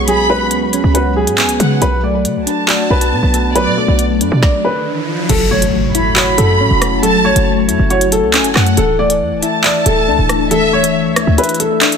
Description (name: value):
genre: hip hop, drill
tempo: 138 BPM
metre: 4/4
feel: half-time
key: F# minor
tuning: A4 = 440 Hz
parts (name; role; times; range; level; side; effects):
- dark grand piano; melody; 0.0-12.0 s; G#4 to D5; -17 LUFS; equal; ping-pong delay
- warm studio violin section; second line; 0.0-10.9 s; D5 to B5; -20 LUFS; equal; ping-pong delay
- soft electric-piano-like synth keys; accompaniment; 0.0-12.0 s; E3 to E5; -17 LUFS; left 2 dB; chorus, phaser
- short 808-style bass; bass; 0.0-11.4 s; D1 to D3; -17 LUFS; right 1 dB; none
- drill drum kit; drums; 0.1-12.0 s; crash cymbal, handclaps, hi-hat, kick drum, rim click, snare drum; -16 LUFS; equal; none
- riser and impact; sound effects; 4.4-7.0 s; none; -22 LUFS; right 1 dB; none
room: light reverb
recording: dense, heavily limited modern master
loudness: -11 LUFS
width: side -6 dB against mid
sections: 0.0-5.3 A section; 5.3-12.0 B section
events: riser 4.4-5.3; stop 4.4-5.3; impact 5.3-7.0; kick muted 11.4-12.0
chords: 0.0 C#7sus4; 1.8 Bm7; 5.3 F#m7; 8.8 Dsus2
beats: | 0.08 0.51 0.95 1.38 | 1.82 2.25 2.69 3.12 | 3.56 3.99 4.42 4.86 | 5.29 5.73 6.17 6.60 | 7.03 7.47 7.90 8.34 | 8.77 9.21 9.64 10.08 | 10.51 10.95 11.38 11.82